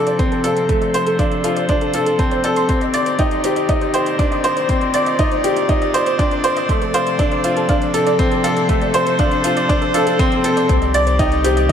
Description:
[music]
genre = piano and strings electronica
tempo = 120 BPM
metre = 4/4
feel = straight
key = C dorian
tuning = A4 = 438 Hz
[part]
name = rich string quartet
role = sustained chords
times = 0.0-11.7 s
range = C3 to D5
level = -23 LUFS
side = left 1 dB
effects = sidechain pumping, low-pass filter
[part]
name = bright upright piano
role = riff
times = 0.0-11.7 s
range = A3 to D5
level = -17 LUFS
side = left 1 dB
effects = ping-pong delay
[part]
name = soft round pluck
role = arpeggios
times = 0.1-11.7 s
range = A4 to C6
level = -24 LUFS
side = right 2 dB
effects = ensemble chorus, sidechain pumping, ping-pong delay
[part]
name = electronic hi-hat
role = drums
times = 0.1-11.7 s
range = none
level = -31 LUFS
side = right 2 dB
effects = overdrive
[part]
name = electronic kick drum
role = drums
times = 0.2-11.7 s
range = none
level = -19 LUFS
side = equal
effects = overdrive
[part]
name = warm sub bass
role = bass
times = 10.7-11.7 s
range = C2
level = -18 LUFS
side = equal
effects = sidechain pumping
[sound]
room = moderate lush hall reverb, RT60 2.3 s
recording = none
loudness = -14 LUFS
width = side -8 dB against mid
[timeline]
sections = 0.0-10.7 A section; 10.7-11.7 B section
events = build-up 0.0-10.7; drop 10.7-11.7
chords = 0.0 Dm7/C; 2.7 Cmadd9; 6.7 Dm7/C; 10.7 Cmadd9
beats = 0.19 | 0.69 1.19 1.69 2.19 | 2.69 3.19 3.69 4.19 | 4.69 5.19 5.69 6.19 | 6.69 7.19 7.69 8.19 | 8.69 9.19 9.69 10.19 | 10.69 11.19 11.69

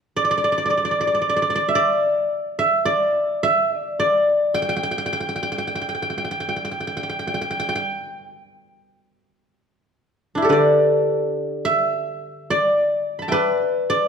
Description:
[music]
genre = chinese traditional, Chinese solo plucked strings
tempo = 47-55 BPM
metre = 4/4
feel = rubato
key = unclear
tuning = A4 = 441 Hz
[part]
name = guzheng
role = solo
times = 0.2-14.1 s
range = D3 to B5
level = -18 LUFS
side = equal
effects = none
[sound]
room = moderate recital hall reverb, RT60 1.5 s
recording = none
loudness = -18 LUFS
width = side -6 dB against mid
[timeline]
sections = 0.0-9.3 A section; 9.3-14.1 B section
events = none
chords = none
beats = | 0.11 1.20 2.31 3.43 | 4.55 5.69 6.87 8.10 | 9.34 10.52 11.69 12.82 | 13.92

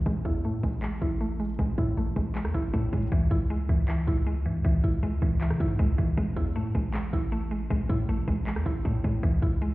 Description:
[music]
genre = hip hop, trap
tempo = 157 BPM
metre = 4/4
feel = half-time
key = unclear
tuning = A4 = 440 Hz
[part]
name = mallet-like synth pluck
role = accompaniment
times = 0.0-9.7 s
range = E3 to E4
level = -31 LUFS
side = right 1 dB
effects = chorus, low-pass filter
[part]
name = distorted 808-style bass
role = bass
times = 0.0-9.7 s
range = A1 to C#3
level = -28 LUFS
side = equal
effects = distortion
[part]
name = trap drum kit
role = drums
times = 0.0-9.7 s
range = handclaps, hi-hat, kick drum, rim click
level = -28 LUFS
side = equal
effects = none
[sound]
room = light reverb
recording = heard muffled through a wall, stone room reverb, EQ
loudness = -25 LUFS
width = side -19 dB against mid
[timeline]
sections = 0.0-9.7 A section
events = filter sweep on synth pluck 0.0-3.1; hi-hats muted 3.1-9.2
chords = 0.1 A5; 3.1 C#m; 6.2 A5; 9.2 C#m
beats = | 0.06 0.44 0.82 1.21 | 1.59 1.97 2.35 2.73 | 3.12 3.50 3.88 4.26 | 4.65 5.03 5.41 5.79 | 6.17 6.56 6.94 7.32 | 7.70 8.09 8.47 8.85 | 9.23 9.61

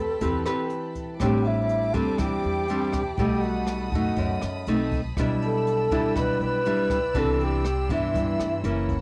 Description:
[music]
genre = bossa nova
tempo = 121 BPM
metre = 4/4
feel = straight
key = unclear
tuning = A4 = 440 Hz
[part]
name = wooden-headed alto flute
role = melody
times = 0.0-8.9 s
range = E4 to B4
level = -30 LUFS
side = equal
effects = cassette tape
[part]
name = nylon-string guitar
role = accompaniment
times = 0.0-9.0 s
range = F#2 to B4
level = -29 LUFS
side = equal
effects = cassette tape
[part]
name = warm studio string section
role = sustained chords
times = 0.0-9.0 s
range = A4 to E6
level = -42 LUFS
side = equal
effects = cassette tape
[part]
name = upright bass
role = bass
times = 0.0-9.0 s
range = F#1 to G2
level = -32 LUFS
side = equal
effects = none
[part]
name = jazz brush drum kit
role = drums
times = 0.2-9.0 s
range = hi-hat, kick drum, rim click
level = -34 LUFS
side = equal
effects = cassette tape
[part]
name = breathy mellow concert flute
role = second line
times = 1.2-8.9 s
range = E5 to B5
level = -38 LUFS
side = equal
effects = cassette tape
[sound]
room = light reverb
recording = home recording on cassette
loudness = -25 LUFS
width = mono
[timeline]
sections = 0.0-1.2 A section; 1.2-9.0 B section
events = none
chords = 0.0 Am9; 1.2 Am11; 3.2 B7b13; 4.7 B7b9; 5.2 Em7/B; 7.2 Cmaj9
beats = 0.22 0.71 | 1.21 1.70 2.20 2.69 | 3.19 3.68 4.18 4.67 | 5.17 5.66 6.16 6.66 | 7.15 7.65 8.14 8.64

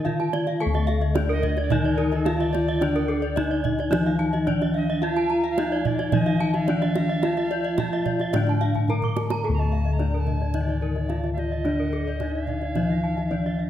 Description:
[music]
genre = Balinese gamelan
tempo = 109 BPM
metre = 4/4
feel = straight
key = D pelog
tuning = A4 = 438 Hz
[part]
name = gamelan-type bronze metallophone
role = melody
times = 0.0-13.7 s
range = D4 to Bb4-20c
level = -28 LUFS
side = equal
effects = none
[part]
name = gamelan-type bronze metallophone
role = accompaniment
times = 0.0-13.7 s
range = D3 to A3-30c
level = -31 LUFS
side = left 1 dB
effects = none
[part]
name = gamelan-type bronze metallophone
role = arpeggios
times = 0.0-13.7 s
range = A4-30c to Bb5-20c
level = -31 LUFS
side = left 5 dB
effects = none
[part]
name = gamelan-type bronze metallophone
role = arpeggios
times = 0.0-13.6 s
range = Bb4-20c to D6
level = -32 LUFS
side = right 5 dB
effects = none
[part]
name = gamelan-type bossed gongs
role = bass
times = 0.0-13.7 s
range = D2 to A4-30c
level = -25 LUFS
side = left 2 dB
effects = none
[part]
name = kendang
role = percussion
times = 0.1-13.5 s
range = none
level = -30 LUFS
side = right 6 dB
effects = none
[part]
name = bright alto recorder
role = second line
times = 1.3-13.7 s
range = A4-35c to Bb5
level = -34 LUFS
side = right 3 dB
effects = none
[sound]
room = moderate scoring stage reverb, RT60 1.7 s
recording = none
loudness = -21 LUFS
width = side -11 dB against mid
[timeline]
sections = 0.6-13.7 A section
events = drum fill 8.8-9.4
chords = none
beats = 0.05 | 0.61 1.16 1.71 2.26 | 2.82 3.37 3.92 4.47 | 5.03 5.58 6.13 6.68 | 7.24 7.79 8.34 8.89 | 9.44 10.00 10.55 11.10 | 11.65 12.21 12.76 13.31

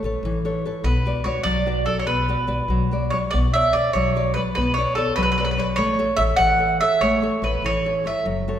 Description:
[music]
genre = italian folk, Italian serenade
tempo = 98 BPM (dotted quarters)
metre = 6/8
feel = rubato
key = unclear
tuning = A4 = 440 Hz
[part]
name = nylon-string guitar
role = accompaniment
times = 0.0-8.6 s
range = E3 to E5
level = -25 LUFS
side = left 2 dB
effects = none
[part]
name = upright bass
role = bass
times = 0.0-8.5 s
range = F#1 to B1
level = -25 LUFS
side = left 1 dB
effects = none
[part]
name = mandolin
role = melody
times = 0.8-8.3 s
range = A4 to F#5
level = -21 LUFS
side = right 2 dB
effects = none
[sound]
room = wet scoring stage reverb, RT60 1.8 s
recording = recorded in a church or concert hall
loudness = -18 LUFS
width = side -10 dB against mid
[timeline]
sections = 0.0-8.6 A section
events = none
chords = 0.0 Aadd9; 0.8 Bm; 3.3 Bmadd9; 5.8 A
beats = 0.23 | 0.84 1.46 | 2.07 2.70 | 3.33 3.95 | 4.57 5.17 | 5.78 6.39 | 7.01 7.63 | 8.26

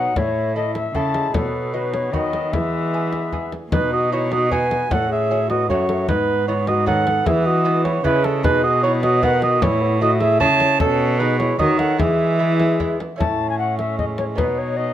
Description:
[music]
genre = classical, renaissance-style consort dance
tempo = 152 BPM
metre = 3/4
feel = straight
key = unclear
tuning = A4 = 439 Hz
[part]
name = mellow tenor recorder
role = melody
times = 0.0-14.9 s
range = C#4 to A5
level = -24 LUFS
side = left 5 dB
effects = none
[part]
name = dark cor anglais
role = second line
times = 0.0-14.9 s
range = B3 to A5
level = -21 LUFS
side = right 4 dB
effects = none
[part]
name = lute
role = accompaniment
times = 0.0-14.9 s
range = F#2 to A4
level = -28 LUFS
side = right 1 dB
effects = none
[part]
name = mellow bassoon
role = accompaniment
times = 0.0-14.9 s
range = D#3 to D#4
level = -28 LUFS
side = equal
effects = none
[part]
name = rich cello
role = bass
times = 0.0-14.9 s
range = F#2 to E3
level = -23 LUFS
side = right 1 dB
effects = none
[part]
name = frame drum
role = percussion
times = 0.2-14.6 s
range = none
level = -25 LUFS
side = left 2 dB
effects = none
[sound]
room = light reverb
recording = none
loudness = -17 LUFS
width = side -11 dB against mid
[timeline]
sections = 0.0-3.7 A section; 3.7-13.2 A section; 13.2-14.9 B section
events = none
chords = 0.2 A; 1.3 B; 2.5 E; 3.7 B; 4.9 F#m/A; 6.1 G#m; 7.3 E; 8.4 B; 9.6 A; 10.8 B; 12.0 E; 13.2 A; 14.4 B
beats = | 0.16 0.56 0.95 | 1.34 1.74 2.13 | 2.53 2.93 3.33 | 3.73 4.12 4.52 | 4.91 5.30 5.70 | 6.09 6.48 6.88 | 7.27 7.66 8.05 | 8.44 8.83 9.23 | 9.62 10.01 10.41 | 10.80 11.20 11.59 | 11.99 12.40 12.80 | 13.20 13.59 13.99 | 14.38 14.78

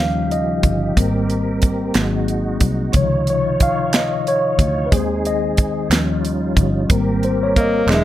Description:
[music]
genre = slow gospel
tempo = 61 BPM (dotted quarters)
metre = 6/8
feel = straight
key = Ab major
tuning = A4 = 438 Hz
[part]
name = mellow tine electric piano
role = accompaniment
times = 0.0-8.0 s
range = C3 to F5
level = -20 LUFS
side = left 2 dB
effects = medium stereo tremolo
[part]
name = tonewheel organ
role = sustained chords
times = 0.0-8.0 s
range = Db3 to Db5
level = -25 LUFS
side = right 2 dB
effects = chorus vibrato, slow rotary speaker
[part]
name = fingered electric bass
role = bass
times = 0.0-8.0 s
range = E1 to Eb2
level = -22 LUFS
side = equal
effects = none
[part]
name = tight funk drum kit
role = drums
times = 0.3-8.0 s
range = hi-hat, kick drum, snare drum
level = -17 LUFS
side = right 1 dB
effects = none
[part]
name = group handclap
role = percussion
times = 2.0-8.0 s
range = none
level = -26 LUFS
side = right 4 dB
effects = none
[part]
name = warm alto saxophone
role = melody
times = 7.6-8.0 s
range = G#3 to Bb3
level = -17 LUFS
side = equal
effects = none
[sound]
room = light reverb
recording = none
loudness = -15 LUFS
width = side -13 dB against mid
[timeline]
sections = 0.0-8.0 A section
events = tine electric piano solo 0.0-8.0; drum fill 7.9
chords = 0.0 Eb9; 1.0 Abmaj9; 2.0 Ab7; 2.9 Dbmaj9; 4.9 Ab/Eb; 5.9 Eb9; 6.9 Abmaj9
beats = | 0.97 1.96 | 2.94 3.93 | 4.92 5.91 | 6.89 7.88

